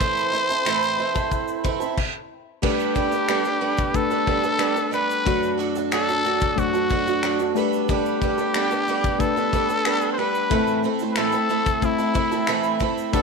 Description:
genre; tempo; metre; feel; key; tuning
acoustic pop; 91 BPM; 4/4; straight; G major; A4 = 440 Hz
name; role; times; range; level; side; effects
growling trumpet; melody; 0.0-13.2 s; E4 to C5; -24 LUFS; left 2 dB; none
picked twelve-string acoustic guitar; accompaniment; 0.0-13.2 s; A2 to A4; -24 LUFS; right 9 dB; none
modern studio drum kit; drums; 0.0-13.2 s; crash cymbal, finger snaps, kick drum, shaker; -27 LUFS; left 2 dB; none
reed electric piano; accompaniment; 2.6-13.2 s; F#2 to D5; -26 LUFS; left 16 dB; none
room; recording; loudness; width
moderate echo chamber reverb, RT60 1.6 s, studio ambience; 1960s-style stereo with parts hard left and right; -20 LUFS; side -4 dB against mid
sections
0.0-2.6 A section; 2.6-13.2 B section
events
stop 2.0-2.6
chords
0.0 Am; 2.6 Gadd9; 5.3 D/F#; 7.6 Gadd9; 10.5 Am

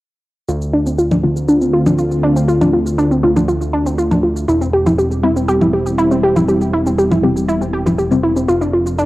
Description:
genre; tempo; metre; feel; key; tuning
melodic techno; 120 BPM; 4/4; straight; D minor; A4 = 439 Hz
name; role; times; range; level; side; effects
sweeping resonant pad; sustained chords; 0.5-9.1 s; D3 to A4; -20 LUFS; equal; chorus
wide unison pluck; arpeggios; 0.5-9.1 s; C4 to G4; -15 LUFS; equal; cassette tape, tape echo
fat analog bass; bass; 0.5-9.1 s; E1 to D2; -20 LUFS; equal; none
shaker and congas; drums; 0.5-9.1 s; none; -19 LUFS; equal; cassette tape
filtered dub chord stab; stabs; 1.2-8.5 s; C3 to D4; -20 LUFS; left 3 dB; chorus, tape echo
room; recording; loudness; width
light reverb, digital ambience; home recording on cassette; -12 LUFS; side -17 dB against mid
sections
0.5-9.1 A section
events
filter sweep on synth arpeggio sound 0.5-9.1; filter sweep on synth stab 0.5-9.1; filter sweep on analog synth pad 0.5-9.1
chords
0.5 Dm7; 4.5 C/E; 8.5 F6

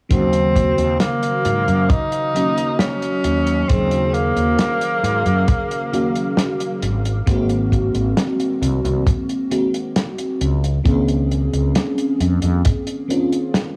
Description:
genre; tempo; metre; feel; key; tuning
vaporwave; 67 BPM; 4/4; straight; Eb dorian; A4 = 445 Hz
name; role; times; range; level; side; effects
warm tenor saxophone; melody; 0.1-6.8 s; Bb3 to Eb4; -23 LUFS; equal; tape echo
FM electric piano with soft pad layer; accompaniment; 0.1-13.8 s; Db3 to Ab4; -24 LUFS; equal; analog chorus, analog delay
fretless electric bass; bass; 0.1-12.6 s; Ab1 to Ab2; -22 LUFS; equal; none
kick drum; drums; 0.1-12.8 s; none; -20 LUFS; equal; studio reverb
warm soul drum kit; drums; 0.1-13.7 s; hi-hat, snare drum; -26 LUFS; equal; studio reverb
room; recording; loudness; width
light reverb, studio ambience; small room ambience; -19 LUFS; mono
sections
0.1-13.8 A section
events
none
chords
0.1 Ebm7; 6.8 Ab9; 10.4 Dbmaj13

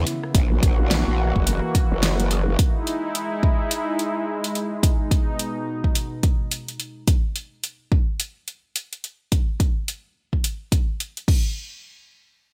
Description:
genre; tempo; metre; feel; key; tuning
glitch hop; 107 BPM; 4/4; swing 60% on 16ths; unclear; A4 = 441 Hz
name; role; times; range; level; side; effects
warm analog pad; sustained chords; 0.0-7.1 s; B2 to F#4; -29 LUFS; equal; chorus, sidechain pumping
growl bass; bass; 0.0-2.6 s; F#1 to A#1; -24 LUFS; equal; chorus
pop drum kit; drums; 0.1-11.4 s; crash cymbal, hi-hat, rim click, snare drum; -28 LUFS; equal; small room ambience, gated reverb
electronic kick drum; drums; 0.3-11.4 s; none; -22 LUFS; equal; small room ambience
room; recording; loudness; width
light reverb, digital ambience; bright 1980s-style digital production; -23 LUFS; mono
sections
0.0-11.6 A section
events
none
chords
0.3 F#7; 2.6 Emaj7; 4.8 B6; 7.1 N.C.

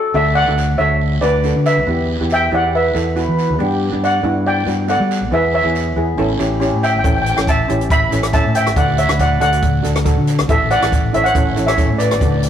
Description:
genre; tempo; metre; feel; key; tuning
calypso; 139 BPM; 4/4; swing 53% on 16ths; D major; A4 = 438 Hz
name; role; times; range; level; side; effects
mellow hollow baroque flute; second line; 0.0-0.1, 3.2-3.9 s; G4 to B4; -22 LUFS; left 2 dB; none
steel pan; melody; 0.1-12.5 s; A4 to B5; -17 LUFS; equal; none
steel pan; accompaniment; 0.1-12.4 s; B3 to B4; -22 LUFS; right 1 dB; none
fingered electric bass; bass; 0.1-12.5 s; A1 to G3; -19 LUFS; equal; none
guiro; percussion; 0.2-12.5 s; none; -33 LUFS; right 4 dB; none
compact cocktail drum kit; drums; 7.0-12.5 s; hi-hat, kick drum, rim click; -18 LUFS; equal; none
room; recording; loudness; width
moderate stone room reverb, RT60 1.5 s; rough rehearsal-room recording, warm saturation; -13 LUFS; side -9 dB against mid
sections
0.1-12.5 A section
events
none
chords
0.1 D; 1.9 Em; 3.6 G; 5.3 E; 6.2 A; 8.8 D; 10.5 Asus4; 11.3 A

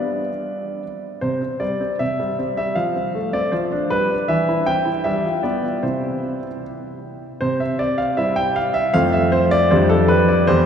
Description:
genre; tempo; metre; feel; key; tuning
classical-period piano sonatina; 78 BPM; 2/4; straight; C major; A4 = 440 Hz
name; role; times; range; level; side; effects
clear grand piano; solo; 0.0-10.7 s; E2 to G5; -18 LUFS; equal; none
room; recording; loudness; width
wet cathedral reverb, RT60 5.1 s; heard from further back in the room; -17 LUFS; side -8 dB against mid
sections
0.0-7.4 A section; 7.4-10.7 B section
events
none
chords
0.0 G; 1.2 C5; 2.8 F; 3.5 G7/F; 4.3 C/E; 5.0 G7; 5.8 C; 8.9 F; 9.7 G5/F

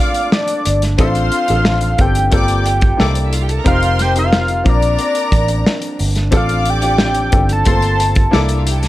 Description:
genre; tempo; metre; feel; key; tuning
lush 1970s-style soul; 90 BPM; 4/4; straight; Bb major; A4 = 440 Hz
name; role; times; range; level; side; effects
fat analog lead; melody; 0.0-8.6 s; D5 to A5; -18 LUFS; equal; chorus
clear symphonic string section; second line; 0.0-8.9 s; C4 to D6; -24 LUFS; left 1 dB; none
warm baby grand piano; accompaniment; 0.0-8.9 s; A3 to Bb4; -22 LUFS; left 4 dB; none
warm French horn section; sustained chords; 0.0-8.9 s; C3 to Bb4; -29 LUFS; right 2 dB; none
warm soul drum kit; drums; 0.1-8.9 s; hi-hat, kick drum, snare drum; -16 LUFS; equal; none
vintage muted fingered electric bass; bass; 0.7-8.9 s; F1 to C2; -17 LUFS; equal; none
room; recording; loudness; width
little or no reverb; none; -12 LUFS; side -15 dB against mid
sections
0.0-8.9 A section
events
none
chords
0.0 Bbmaj9; 1.0 Dm7/A; 2.3 Gm11; 3.0 C13; 3.7 F9sus4; 4.7 Bbmaj9; 6.3 Dm7/A; 7.7 Gm11; 8.3 C13

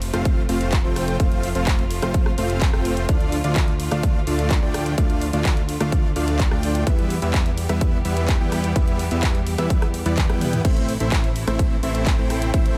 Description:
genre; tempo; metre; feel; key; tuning
EDM, festival progressive house; 127 BPM; 4/4; straight; unclear; A4 = 442 Hz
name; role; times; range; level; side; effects
clear studio string section; sustained chords; 0.0-12.8 s; C3 to G4; -35 LUFS; equal; sidechain pumping
fat analog bass; bass; 0.0-12.8 s; F1 to E2; -27 LUFS; equal; tube saturation, sidechain pumping
big-room dance drum kit; drums; 0.0-12.8 s; crash cymbal, handclaps, hi-hat, ride cymbal, rim click, toms; -31 LUFS; equal; none
dense compressed supersaw; riff; 0.1-12.8 s; G3 to G5; -28 LUFS; equal; sidechain pumping, delay
electronic kick drum; drums; 0.3-12.6 s; none; -22 LUFS; equal; none
room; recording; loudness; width
little or no reverb; none; -21 LUFS; mono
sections
0.0-12.8 A section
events
drum fill 10.2-10.6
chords
0.0 F; 3.1 Dm; 6.9 Em; 10.6 Am

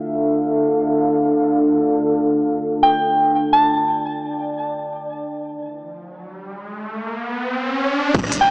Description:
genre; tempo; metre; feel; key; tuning
half-time drum and bass; free time; none; none; D minor; A4 = 445 Hz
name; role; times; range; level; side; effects
deep dark ambient pad; sustained chords; 0.0-6.8 s; D4 to F5; -18 LUFS; equal; chorus, built-in reverb, sidechain pumping
soft synth bell; melody; 2.8-3.8, 8.4-8.5 s; G5 to A5; -16 LUFS; equal; chorus, tape echo
riser and impact; sound effects; 6.5-8.5 s; none; -22 LUFS; equal; none
growling 808-style bass; bass; 8.1-8.3 s; D1; -26 LUFS; equal; none
drum and bass drum kit; drums; 8.1-8.4 s; crash cymbal, hi-hat, rim click; -24 LUFS; equal; low-pass filter on snare, low-pass filter on hats, low-pass filter on cymbals
electronic kick drum; drums; 8.1-8.2 s; none; -19 LUFS; equal; none
room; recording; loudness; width
moderate huge ambient reverb, RT60 4.4 s; dry, gritty hardware recording, small speaker sound; -16 LUFS; side -26 dB against mid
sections
0.0-8.1 A section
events
riser 6.5-8.1; impact 8.1-8.5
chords
0.0 Dmadd9

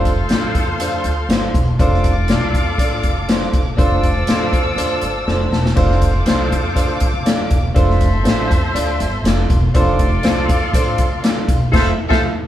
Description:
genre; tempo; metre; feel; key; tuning
uptempo 1960s-style soul; 121 BPM; 4/4; straight; F major; A4 = 439 Hz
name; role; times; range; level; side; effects
clear horn section; second line; 0.0-12.2 s; F4 to E5; -24 LUFS; left 1 dB; none
dark studio violin section; second line; 0.0-12.3 s; F4 to E6; -26 LUFS; equal; none
clear concert grand piano; accompaniment; 0.0-12.3 s; D4 to A5; -21 LUFS; right 1 dB; none
upright bass; bass; 0.0-12.3 s; E1 to F2; -20 LUFS; equal; none
swinging big-band drum kit; drums; 0.1-12.2 s; crash cymbal, hi-hat, kick drum, snare drum; -17 LUFS; equal; none
room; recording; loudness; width
moderate studio reverb, RT60 0.7 s; band playing live in one room; -14 LUFS; side -12 dB against mid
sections
0.0-12.5 A section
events
grand piano fill 4.8-5.8; drum fill 5.3-5.8; band accent 11.7-12.5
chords
0.0 Dm7/F; 1.8 F6; 3.8 Dm7/F; 5.8 F6; 7.8 Dm7/F; 9.7 F6; 11.7 Fmaj7

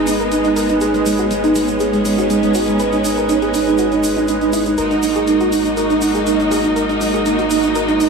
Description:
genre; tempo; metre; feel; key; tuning
progressive house; 121 BPM; 4/4; straight; G# minor; A4 = 439 Hz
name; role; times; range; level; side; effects
warm studio string section; sustained chords; 0.0-8.1 s; F#3 to D#4; -22 LUFS; left 1 dB; none
soft round pluck; arpeggios; 0.0-8.1 s; G#3 to B4; -18 LUFS; right 1 dB; wide subtle chorus, digital delay
soft supersaw; stabs; 0.0-8.1 s; G#3 to D#5; -18 LUFS; right 3 dB; digital delay
round analog bass; bass; 0.0-8.1 s; G#1; -32 LUFS; left 1 dB; none
electronic hi-hat; drums; 0.1-8.1 s; none; -30 LUFS; left 2 dB; none
tube shaker; percussion; 0.1-8.1 s; none; -31 LUFS; right 2 dB; none
room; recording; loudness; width
moderate lush hall reverb, RT60 1.9 s, small room ambience; none; -14 LUFS; side -4 dB against mid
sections
0.0-8.1 A section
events
none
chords
0.0 G#m; 4.8 D#m/G#

